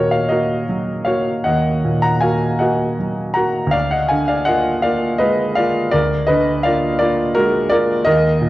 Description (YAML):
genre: classical, romantic nocturne for solo piano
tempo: 51-58 BPM (dotted quarters)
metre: 12/8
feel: rubato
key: unclear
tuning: A4 = 440 Hz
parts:
  - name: clear grand piano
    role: solo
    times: 0.0-8.5 s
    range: D2 to Bb5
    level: -15 LUFS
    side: equal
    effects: none
room: wet recital hall reverb, RT60 1.6 s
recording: worn, warbling old tape, cassette tape, warbly pitch drift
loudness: -15 LUFS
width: side -16 dB against mid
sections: 0.0-8.5 A section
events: none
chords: 0.0 Ebm; 3.7 Bb7/D